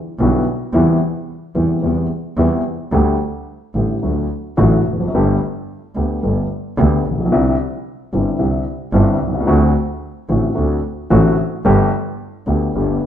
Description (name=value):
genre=tango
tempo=110 BPM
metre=4/4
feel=rubato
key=G major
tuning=A4 = 439 Hz
part: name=dark upright piano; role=accompaniment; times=0.2-13.0 s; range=G1 to G4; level=-17 LUFS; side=left 1 dB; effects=none
part: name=warm double bass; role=bass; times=0.2-13.0 s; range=F1 to E2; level=-18 LUFS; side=right 2 dB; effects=none
room=moderate large studio reverb, RT60 1.2 s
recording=band playing live in one room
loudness=-15 LUFS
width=side -10 dB against mid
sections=0.0-13.1 A section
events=none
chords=0.0 Em7; 0.7 Cmaj7/E; 2.9 Dsus4; 4.0 D; 5.1 Gadd9; 7.3 Cadd9; 9.5 D7; 11.7 Gadd9